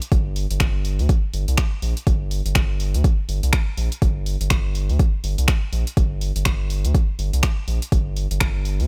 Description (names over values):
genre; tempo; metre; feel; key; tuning
deep house; 123 BPM; 4/4; swing 59% on 16ths; G minor; A4 = 438 Hz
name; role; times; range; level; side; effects
deep house drum kit; drums; 0.0-8.9 s; finger snaps, hi-hat; -31 LUFS; equal; overdrive
round analog bass; bass; 0.1-8.9 s; G1 to D2; -24 LUFS; equal; sidechain pumping
electronic kick drum; drums; 0.1-8.5 s; none; -21 LUFS; equal; overdrive
room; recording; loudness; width
little or no reverb; none; -21 LUFS; mono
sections
0.0-8.9 A section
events
none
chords
none